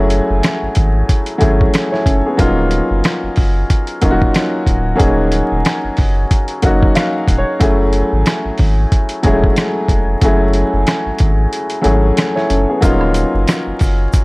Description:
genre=hip hop, boom-bap hip-hop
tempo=92 BPM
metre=4/4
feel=swing 58% on 16ths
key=unclear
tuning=A4 = 442 Hz
part: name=warm upright piano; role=accompaniment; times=0.0-14.2 s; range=Gb3 to F5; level=-16 LUFS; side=left 1 dB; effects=cassette tape
part: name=warm sub bass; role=bass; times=0.0-14.1 s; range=D1 to Ab1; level=-16 LUFS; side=equal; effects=transformer saturation
part: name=lo-fi sampler-style drum kit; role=drums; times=0.1-14.2 s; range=hi-hat, kick drum, rim click, snare drum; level=-15 LUFS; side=equal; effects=none
part: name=tube shaker and woodblock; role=percussion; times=12.8-14.2 s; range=none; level=-32 LUFS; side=right 4 dB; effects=none
room=digital ambience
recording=dry, gritty hardware recording, vinyl crackle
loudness=-12 LUFS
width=side -24 dB against mid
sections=0.0-14.2 A section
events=kick muted 11.5-12.8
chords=0.0 Gbm9; 2.4 Ebm9; 7.6 Gbm9; 12.8 Ebm9

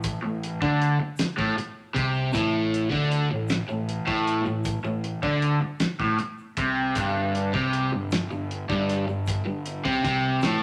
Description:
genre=psychedelic rock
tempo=52 BPM (dotted quarters)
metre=6/8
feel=straight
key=A minor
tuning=A4 = 440 Hz
part: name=overdriven semi-hollow guitar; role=riff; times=0.0-10.6 s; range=G2 to D3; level=-27 LUFS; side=equal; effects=phaser
part: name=fuzz fingered electric bass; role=bass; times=0.0-10.6 s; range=G1 to D2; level=-36 LUFS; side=equal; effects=overdrive
part: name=cloth-damped thuddy drum kit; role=drums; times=0.0-10.6 s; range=hi-hat, kick drum, snare drum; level=-32 LUFS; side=equal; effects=none
part: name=egg shaker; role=percussion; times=0.0-10.6 s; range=none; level=-58 LUFS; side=equal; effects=none
room=moderate large studio reverb, RT60 1.1 s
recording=none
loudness=-26 LUFS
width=mono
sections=0.0-10.6 A section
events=none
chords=0.0 Am; 7.0 N.C.

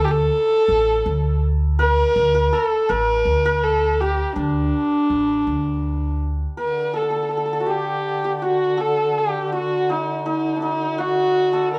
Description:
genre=persian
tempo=54 BPM (dotted quarters)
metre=6/8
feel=straight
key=D dastgah chahargah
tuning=A4 = 440 Hz
part: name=dark kamancheh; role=melody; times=0.0-11.8 s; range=D4 to Bb4+46c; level=-22 LUFS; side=equal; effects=none
part: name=santur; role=second line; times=0.0-11.8 s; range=D4 to C#5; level=-29 LUFS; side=equal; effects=none
part: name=upright bass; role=bass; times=0.0-6.4 s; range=A1 to D2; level=-24 LUFS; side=equal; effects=none
part: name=mellow duduk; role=drone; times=6.6-11.8 s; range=D3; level=-32 LUFS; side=equal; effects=none
room=moderate studio reverb, RT60 0.6 s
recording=band playing live in one room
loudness=-20 LUFS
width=mono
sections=0.0-6.6 A section; 6.6-11.8 B section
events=none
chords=none

